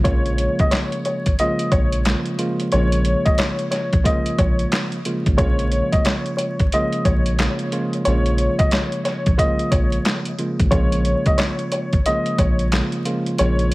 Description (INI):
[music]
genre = hip hop, boom-bap hip-hop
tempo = 90 BPM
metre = 4/4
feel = swing 62% on 16ths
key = Bb minor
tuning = A4 = 441 Hz
[part]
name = dark upright piano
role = melody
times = 0.0-13.7 s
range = Db5 to Eb5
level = -23 LUFS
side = left 1 dB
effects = high-pass filter, low-pass filter, tape echo
[part]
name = tine electric piano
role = accompaniment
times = 0.0-13.7 s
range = Db3 to F4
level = -23 LUFS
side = right 1 dB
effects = cassette tape, high-pass filter, low-pass filter
[part]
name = soft dub sub bass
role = bass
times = 0.0-13.7 s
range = Ab1 to Bb1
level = -20 LUFS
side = equal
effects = none
[part]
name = boom bap sampler-style drum kit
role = drums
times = 0.0-13.7 s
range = handclaps, hi-hat, kick drum, snare drum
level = -21 LUFS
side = equal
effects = vintage 12-bit sampler grit
[sound]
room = little or no reverb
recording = vinyl crackle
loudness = -17 LUFS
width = side -21 dB against mid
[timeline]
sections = 0.0-13.7 A section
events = none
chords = 0.0 Bbm7